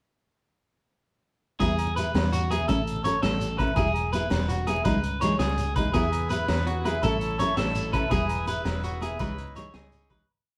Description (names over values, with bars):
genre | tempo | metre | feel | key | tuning
highlife guitar band | 110 BPM (dotted quarters) | 12/8 | straight | E major | A4 = 440 Hz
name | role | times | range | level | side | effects
nylon-string guitar | accompaniment | 1.6-10.2 s | E3 to A4 | -32 LUFS | equal | none
electric guitar at the edge of break-up | arpeggios | 1.6-10.3 s | F#4 to C#5 | -32 LUFS | equal | none
fingered electric bass | bass | 1.6-10.3 s | E1 to E2 | -32 LUFS | equal | none
crunchy breakbeat drum kit | drums | 1.6-10.2 s | hi-hat, kick drum, snare drum | -34 LUFS | equal | none
agogo bells | percussion | 1.6-10.3 s | none | -42 LUFS | equal | none
congas | percussion | 1.6-10.3 s | none | -37 LUFS | equal | none
shekere | percussion | 1.6-10.2 s | none | -40 LUFS | equal | none
accordion | sustained chords | 5.9-10.3 s | D#4 to C#5 | -40 LUFS | equal | none
room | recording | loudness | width
moderate studio reverb, RT60 0.7 s | band playing live in one room | -26 LUFS | mono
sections
1.6-10.3 groove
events
fade-out 8.1-10.3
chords
1.6 E; 2.7 A; 3.8 E; 4.9 C#madd9; 5.9 E; 7.0 A; 8.1 E; 9.2 C#madd9